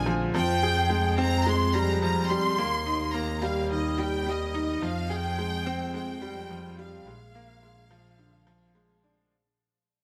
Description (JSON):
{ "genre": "piano and strings electronica", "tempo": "107 BPM", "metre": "4/4", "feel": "straight", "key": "F dorian", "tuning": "A4 = 439 Hz", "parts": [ { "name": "clear studio violin section", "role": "melody", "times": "0.0-9.0 s", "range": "Eb5 to C6", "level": "-32 LUFS", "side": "equal", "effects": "none" }, { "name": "bright upright piano", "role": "riff", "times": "0.0-9.3 s", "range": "D3 to Ab4", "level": "-31 LUFS", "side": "equal", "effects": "none" }, { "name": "rich chamber double bass section", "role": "bass", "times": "0.0-9.3 s", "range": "Bb1 to F2", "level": "-33 LUFS", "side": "equal", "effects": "none" } ], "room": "moderate concert hall reverb, RT60 1.8 s, studio ambience", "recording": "none", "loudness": "-27 LUFS", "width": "mono", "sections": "0.0-9.3 A section", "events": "drop 0.0-9.3; fade-out 0.3-9.3", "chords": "0.3 Fmadd9; 2.6 Eb; 4.8 Fmadd9; 7.1 Bb7", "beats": "| 0.34 0.90 1.46 2.02 | 2.58 3.14 3.70 4.26 | 4.83 5.39 5.95 6.51 | 7.07 7.63 8.19 8.75" }